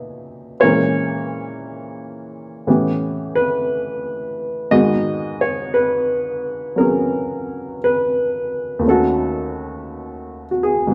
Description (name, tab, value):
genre	jazz ballad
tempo	58 BPM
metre	4/4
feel	swing 67% on 8ths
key	G# minor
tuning	A4 = 435 Hz
part	warm upright piano	solo	0.0-10.9 s	D#2 to E5	-20 LUFS	equal	none
room	wet stone room reverb, RT60 1.0 s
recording	band playing live in one room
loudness	-20 LUFS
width	mono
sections	0.0-10.9 A section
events	none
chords	0.0 Bmaj7; 0.6 A#m7b5; 2.7 A9; 4.7 G#m9; 8.8 D#m7b5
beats	| 0.61 1.64 2.67 3.69 | 4.72 5.75 6.78 7.81 | 8.84 9.87 10.91